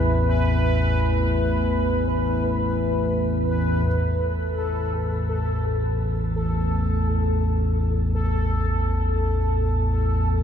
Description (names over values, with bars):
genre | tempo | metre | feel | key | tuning
dark ambient drone | free time | none | none | unclear | A4 = 440 Hz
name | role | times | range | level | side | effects
dark analog pad | sustained chords | 0.0-3.9 s | E3 to G#5 | -32 LUFS | left 1 dB | chorus, shimmer reverb
analog drone | drone | 0.0-10.4 s | A1 to E2 | -21 LUFS | equal | chorus
bubbling stepped-filter texture | texture | 0.0-10.4 s | A4 to B4 | -27 LUFS | equal | chorus, built-in reverb, shimmer reverb
room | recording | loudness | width
wet huge ambient reverb, RT60 7.2 s | dark, warm production | -20 LUFS | side -8 dB against mid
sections
0.0-3.9 A section; 3.9-10.4 B section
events
none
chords
0.0 E/A; 3.9 A5